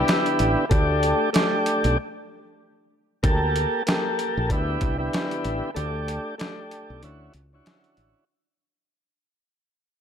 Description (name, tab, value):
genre	hip hop, boom-bap hip-hop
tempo	95 BPM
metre	4/4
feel	swing 59% on 16ths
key	D major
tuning	A4 = 442 Hz
part	tonewheel organ	accompaniment	0.0-8.2 s	D3 to A4	-24 LUFS	equal	slow rotary speaker, high-pass filter, low-pass filter
part	woody fretless electric bass	bass	0.0-8.1 s	A1 to D2	-26 LUFS	equal	none
part	boom bap sampler-style drum kit	drums	0.1-8.1 s	hi-hat, kick drum, snare drum	-25 LUFS	equal	none
room	light reverb, digital ambience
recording	none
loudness	-21 LUFS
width	side -8 dB against mid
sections	0.0-3.2 A section; 3.2-8.3 B section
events	break 2.0-3.2, 5.8-8.3; fade-out 3.2-8.3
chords	0.0 Cmaj9 (rootless); 0.7 A7sus4/D; 2.0 N.C.; 3.2 Gmadd9/D; 4.5 Cmaj9; 5.8 A7sus4/D; 7.0 Dmaj9